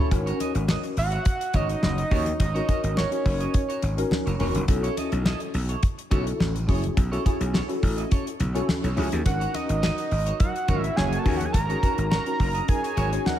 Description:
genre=early-eighties boogie funk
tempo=105 BPM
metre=4/4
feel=straight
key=G# minor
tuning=A4 = 440 Hz
part: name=tine electric piano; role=accompaniment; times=0.0-13.4 s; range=C#4 to C#5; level=-30 LUFS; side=left 2 dB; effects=ensemble chorus
part: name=clean electric guitar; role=riff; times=0.0-13.3 s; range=E4 to D#5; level=-35 LUFS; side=right 4 dB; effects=lush chorus
part: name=gritty slap bass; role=bass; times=0.1-13.2 s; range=E1 to D#2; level=-26 LUFS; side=equal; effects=overdrive
part: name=damped 70s drum kit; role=drums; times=0.1-13.4 s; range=hi-hat, kick drum, snare drum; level=-25 LUFS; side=equal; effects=none
part: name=congas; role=percussion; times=0.1-13.4 s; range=none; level=-35 LUFS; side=left 2 dB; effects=none
part: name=fat analog lead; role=melody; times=1.0-4.1, 9.3-13.4 s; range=C#5 to A#5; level=-28 LUFS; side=right 2 dB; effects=tape echo
part: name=mellow synth brass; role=second line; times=10.4-13.4 s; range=F#3 to C#5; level=-34 LUFS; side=right 1 dB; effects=chorus
room=light reverb, small room ambience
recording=none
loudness=-22 LUFS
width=side -11 dB against mid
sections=0.1-13.4 A section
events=none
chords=0.1 G#9sus4; 4.7 B9sus4; 9.3 G#9sus4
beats=| 0.11 0.69 1.26 1.83 | 2.40 2.97 3.54 4.11 | 4.68 5.26 5.83 6.40 | 6.97 7.54 8.11 8.69 | 9.26 9.83 10.40 10.97 | 11.54 12.11 12.69 13.26

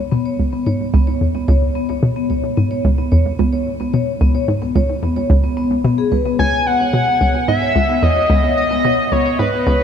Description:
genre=ambient, sequencer-driven space music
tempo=110 BPM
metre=4/4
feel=straight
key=C# minor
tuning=A4 = 440 Hz
part: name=vibraphone with soft mallets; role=arpeggios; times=0.1-9.8 s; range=B3 to C#5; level=-20 LUFS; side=moving between left 7 dB and right 3 dB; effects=auto-pan, tape echo
part: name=hollow square pluck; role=riff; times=0.1-9.8 s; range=C#2 to B2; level=-17 LUFS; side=equal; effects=chorus, tape echo
part: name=pulse-width lead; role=melody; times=6.4-9.8 s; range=B4 to G#5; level=-16 LUFS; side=equal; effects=chorus, tape echo
room=moderate huge ambient reverb, RT60 8.5 s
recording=cassette tape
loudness=-14 LUFS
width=side -8 dB against mid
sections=0.0-9.8 A section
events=filter sweep on synth arpeggio sound 0.0-9.8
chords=0.0 C#7(no3)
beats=0.39 0.94 1.48 | 2.03 2.57 3.12 3.67 | 4.21 4.76 5.30 5.85 | 6.39 6.94 7.48 8.03 | 8.57 9.12 9.66

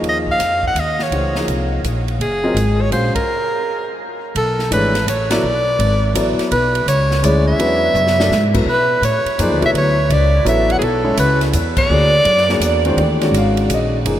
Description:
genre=modal jazz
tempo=167 BPM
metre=3/4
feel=swing 65% on 8ths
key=B dorian from 4.4 s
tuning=A4 = 440 Hz
part: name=warm grand piano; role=accompaniment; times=0.0-14.2 s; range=D#3 to F5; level=-21 LUFS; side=left 1 dB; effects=none
part: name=upright bass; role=bass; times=0.0-14.2 s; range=Gb1 to B2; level=-18 LUFS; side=equal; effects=none
part: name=swinging big-band drum kit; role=drums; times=0.0-14.2 s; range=crash cymbal, hi-hat, kick drum, ride cymbal, snare drum, toms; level=-26 LUFS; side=right 1 dB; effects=none
part: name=clear soprano saxophone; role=melody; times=0.1-12.8 s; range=Ab4 to Gb5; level=-17 LUFS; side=right 1 dB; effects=none
room=wet huge ambient reverb, RT60 8.5 s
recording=in a vast, echoing space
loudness=-14 LUFS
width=side -11 dB against mid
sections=0.0-4.4 A section; 4.4-13.0 B section; 13.0-14.2 C section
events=band accent 3.1, 5.3, 11.7; stop 3.3-4.4; drum fill 7.9-8.3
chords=0.0 Gbadd9; 4.4 Bm9; 6.5 C#m/B; 8.7 Bm9; 10.8 C#m/B; 11.9 A#7alt; 13.0 Ebm11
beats=| 0.04 0.40 0.76 | 1.12 1.48 1.84 | 2.20 2.56 2.92 | 3.28 3.64 4.00 | 4.36 4.72 5.08 | 5.43 5.79 6.15 | 6.51 6.87 7.23 | 7.59 7.95 8.31 | 8.67 9.03 9.39 | 9.75 10.11 10.46 | 10.82 11.18 11.54 | 11.90 12.26 12.62 | 12.98 13.34 13.70 | 14.06

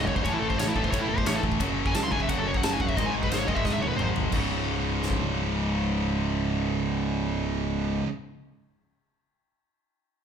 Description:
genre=heavy metal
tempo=176 BPM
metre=4/4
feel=straight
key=C# minor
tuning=A4 = 440 Hz
part: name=high-gain lead guitar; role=melody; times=0.0-4.1 s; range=E4 to B#5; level=-30 LUFS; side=left 1 dB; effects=distortion
part: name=distorted electric guitar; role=riff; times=0.0-8.1 s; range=C#2 to A3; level=-31 LUFS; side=left 8 dB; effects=overdrive
part: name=high-gain distorted guitar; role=riff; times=0.0-8.1 s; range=C#2 to A3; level=-30 LUFS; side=right 7 dB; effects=distortion
part: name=fuzz fingered electric bass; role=bass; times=0.0-8.0 s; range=C#1 to A2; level=-32 LUFS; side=left 1 dB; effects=overdrive
part: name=big rock drum kit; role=drums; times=0.1-5.2 s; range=crash cymbal, kick drum, ride cymbal, snare drum, toms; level=-29 LUFS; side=equal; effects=none
room=moderate large studio reverb, RT60 1.2 s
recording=band playing live in one room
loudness=-24 LUFS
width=side -7 dB against mid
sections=0.0-4.3 A section; 4.3-7.1 B section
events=lead electric guitar solo 0.0-4.3; drum fill 3.6-4.3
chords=0.2 A5; 1.6 F#5; 3.0 G#5; 4.3 C#5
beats=| 0.24 0.58 0.92 1.26 | 1.60 1.94 2.29 2.62 | 2.97 3.31 3.65 3.99 | 4.33 4.67 5.01 5.35 | 5.69 6.03 6.37 6.71

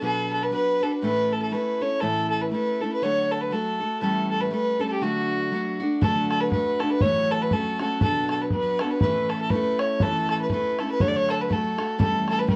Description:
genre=celtic folk, Celtic polka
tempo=120 BPM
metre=2/4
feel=swing 57% on 8ths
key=D major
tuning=A4 = 438 Hz
part: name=clear fiddle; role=melody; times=0.0-12.6 s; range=F#4 to D5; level=-27 LUFS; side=equal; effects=none
part: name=picked steel-string acoustic guitar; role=accompaniment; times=0.0-12.6 s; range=A2 to B4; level=-29 LUFS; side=equal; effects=none
part: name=bodhran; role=percussion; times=6.0-12.6 s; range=none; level=-29 LUFS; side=equal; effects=none
room=light reverb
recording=worn, warbling old tape, cassette tape, warbly pitch drift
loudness=-24 LUFS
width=mono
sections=0.0-6.0 A section; 6.0-12.6 A section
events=none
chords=0.0 Bm; 1.0 A; 3.0 D; 4.0 A7; 5.0 D; 7.0 A6; 8.0 Bm; 9.0 A; 11.0 D; 12.0 A7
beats=| 0.03 0.53 | 1.03 1.53 | 2.03 2.53 | 3.03 3.53 | 4.03 4.53 | 5.03 5.52 | 6.02 6.52 | 7.02 7.52 | 8.02 8.52 | 9.01 9.51 | 10.01 10.51 | 11.00 11.50 | 11.99 12.49

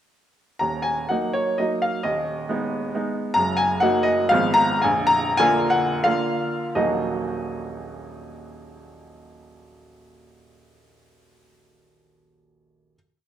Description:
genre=classical, romantic triple-time dance for piano with dotted rhythms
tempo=80-142 BPM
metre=3/4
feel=rubato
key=Eb minor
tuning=A4 = 439 Hz
part: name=clear baby grand piano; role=solo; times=0.6-13.0 s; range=Bb0 to Bb5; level=-20 LUFS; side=equal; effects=none
room=moderate recital hall reverb, RT60 1.6 s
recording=none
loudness=-20 LUFS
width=side -10 dB against mid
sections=0.6-6.8 A section; 6.8-10.8 final chord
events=slowing down 2.7-6.8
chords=0.6 Ebm; 2.0 Abm/Eb; 3.4 Ebm/Gb; 4.3 Fdim/Ab; 4.8 Bb; 6.8 Ebm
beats=| 0.59 1.10 1.58 | 2.02 2.46 2.93 | 3.36 3.82 4.32 | 4.83 5.40 6.06 | 6.76 7.44 8.14 | 8.82 9.51 10.19

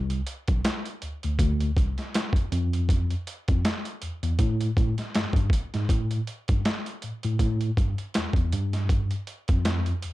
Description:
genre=R&B, neo-soul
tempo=80 BPM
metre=4/4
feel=swing 56% on 16ths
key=A minor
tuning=A4 = 440 Hz
part: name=mellow tine electric piano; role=bass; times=0.0-10.1 s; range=B1 to A2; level=-26 LUFS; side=equal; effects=medium stereo tremolo
part: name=boom bap sampler-style drum kit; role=drums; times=0.1-10.1 s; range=hi-hat, kick drum, snare drum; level=-25 LUFS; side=equal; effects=overdrive
room=little or no reverb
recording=dark, warm production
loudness=-24 LUFS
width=side -17 dB against mid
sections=0.0-5.9 A section; 5.9-10.1 B section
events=none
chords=none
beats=0.64 1.39 2.14 | 2.89 3.64 4.39 5.14 | 5.89 6.64 7.39 8.14 | 8.89 9.64

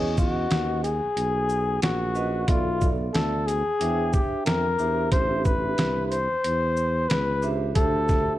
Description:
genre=hip hop, jazz-hop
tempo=91 BPM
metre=4/4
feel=swing 60% on 16ths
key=unclear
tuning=A4 = 440 Hz
part: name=breathy flugelhorn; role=melody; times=0.0-8.4 s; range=F4 to C5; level=-25 LUFS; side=left 2 dB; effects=slapback echo
part: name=vibraphone with medium mallets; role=accompaniment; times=0.0-8.4 s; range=B3 to G5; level=-31 LUFS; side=right 5 dB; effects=none
part: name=breathy tuba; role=bass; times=0.0-8.4 s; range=A1 to F2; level=-28 LUFS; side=equal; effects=none
part: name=trip hop sampler-style drum kit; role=drums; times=0.2-8.3 s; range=hi-hat, kick drum, shaker, snare drum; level=-26 LUFS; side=equal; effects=none
room=studio reverb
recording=dark, warm production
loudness=-22 LUFS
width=side -14 dB against mid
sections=0.0-8.4 A section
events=none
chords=0.0 Emaj9; 2.5 Dm69/B; 3.8 E7alt; 5.1 Am7; 7.8 D5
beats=0.50 1.16 1.82 | 2.48 3.14 3.80 4.46 | 5.12 5.78 6.43 7.09 | 7.75

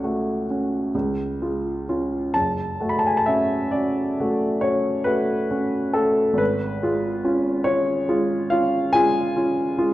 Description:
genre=classical, romantic nocturne for solo piano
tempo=42-49 BPM (dotted quarters)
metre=9/8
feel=rubato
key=F# minor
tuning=A4 = 437 Hz
part: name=warm grand piano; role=solo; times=0.0-9.9 s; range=F#1 to B5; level=-20 LUFS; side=equal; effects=none
room=wet recital hall reverb, RT60 1.6 s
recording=dark, warm production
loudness=-20 LUFS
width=side -15 dB against mid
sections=0.0-9.9 A section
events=none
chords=0.0 F#m/C#; 0.9 C#; 2.3 F#m; 6.4 C#7/G#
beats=0.94 | 2.34 3.72 5.06 | 6.40 7.66 8.95

